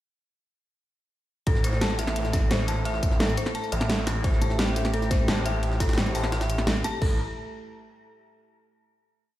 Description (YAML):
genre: dark technical drum and bass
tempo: 173 BPM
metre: 4/4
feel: straight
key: A minor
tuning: A4 = 440 Hz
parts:
  - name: dark analog pad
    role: sustained chords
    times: 1.5-7.2 s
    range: A3 to A4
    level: -34 LUFS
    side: right 2 dB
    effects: chorus, sidechain pumping
  - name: dark detuned synth bell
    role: arpeggios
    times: 1.5-7.2 s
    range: A4 to A5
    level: -32 LUFS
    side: left 2 dB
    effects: chorus, tremolo, sidechain pumping, dub echo
  - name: snarling distorted saw bass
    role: bass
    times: 1.5-7.2 s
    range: A1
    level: -27 LUFS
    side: equal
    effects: distortion, overdrive, sidechain pumping
  - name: dubstep drum kit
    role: drums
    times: 1.5-7.1 s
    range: crash cymbal, hi-hat, snare drum, tambourine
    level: -29 LUFS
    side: equal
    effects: none
  - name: electronic kick drum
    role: drums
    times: 1.5-7.1 s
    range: none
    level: -24 LUFS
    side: equal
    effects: none
  - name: jungle sampler-style drum kit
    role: drums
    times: 1.5-6.9 s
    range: ride cymbal, snare drum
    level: -37 LUFS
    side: equal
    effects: high-pass filter on cymbals, high-pass filter on snare, high-pass filter on room
  - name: metallic wobble bass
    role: bass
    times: 4.4-6.8 s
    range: A1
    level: -26 LUFS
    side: equal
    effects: chorus
room: light reverb, digital ambience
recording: played on a big sound system in a bare room, stone room reverb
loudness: -23 LUFS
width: side -14 dB against mid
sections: 1.5-7.0 drop; 7.0-8.4 final chord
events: drop 1.5-7.0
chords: 1.5 Am; 7.0 A5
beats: | 1.47 1.81 2.16 2.51 | 2.85 3.20 3.55 3.90 | 4.24 4.59 4.94 5.28 | 5.63 5.98 6.32 6.67 | 7.02